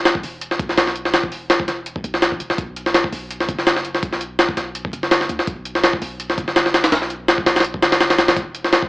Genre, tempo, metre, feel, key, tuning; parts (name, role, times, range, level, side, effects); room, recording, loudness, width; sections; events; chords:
drum and bass, jungle; 166 BPM; 4/4; swing 54% on 16ths; A4 = 440 Hz
warm 808-style bass; bass; 0.0-8.9 s; D1 to D2; -34 LUFS; equal
jungle sampler-style drum kit; drums; 0.1-8.9 s; hi-hat, kick drum, snare drum; -16 LUFS; equal; overdrive
light reverb; vinyl crackle, AM radio sound; -16 LUFS; side -25 dB against mid
0.0-8.9 A section